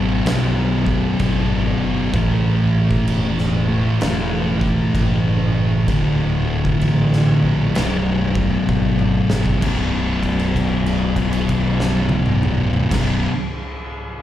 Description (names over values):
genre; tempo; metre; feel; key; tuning
stoner and doom metal; 64 BPM; 4/4; swing 64% on 8ths; B minor; A4 = 444 Hz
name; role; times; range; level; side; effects
thick fuzz guitar; riff; 0.0-13.3 s; B1 to A3; -19 LUFS; left 3 dB; distortion
thick fuzz guitar; riff; 0.0-13.3 s; B1 to A3; -24 LUFS; right 7 dB; distortion
growling fingered electric bass; bass; 0.0-13.2 s; B0 to B1; -23 LUFS; equal; overdrive
oversized low-tuned drum kit; drums; 0.3-13.1 s; crash cymbal, kick drum, snare drum, toms; -23 LUFS; equal; none
room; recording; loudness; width
small room ambience; live gig heard through the venue's PA, club reverb; -16 LUFS; side -12 dB against mid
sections
0.0-9.6 A section; 9.6-13.4 B section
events
drum fill 8.7-9.6; held note 9.6-12.8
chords
0.0 B5; 2.1 A5; 5.9 D5; 7.8 B5